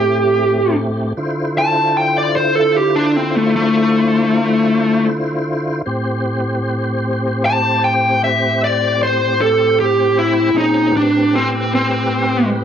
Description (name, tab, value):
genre	blues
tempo	51 BPM (dotted quarters)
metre	12/8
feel	straight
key	A minor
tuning	A4 = 440 Hz
part	smooth overdriven lead guitar	melody	0.0-12.5 s	A3 to A5	-14 LUFS	equal	cassette tape
part	tonewheel organ	sustained chords	0.0-12.6 s	A2 to C5	-18 LUFS	equal	slow rotary speaker, overdrive, chorus vibrato, cassette tape
room	moderate studio reverb, RT60 0.6 s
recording	home recording on cassette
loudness	-13 LUFS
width	side -8 dB against mid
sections	0.0-12.6 A section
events	lead electric guitar solo 0.0-12.6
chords	0.0 Am7; 1.2 Dm7; 5.9 Am7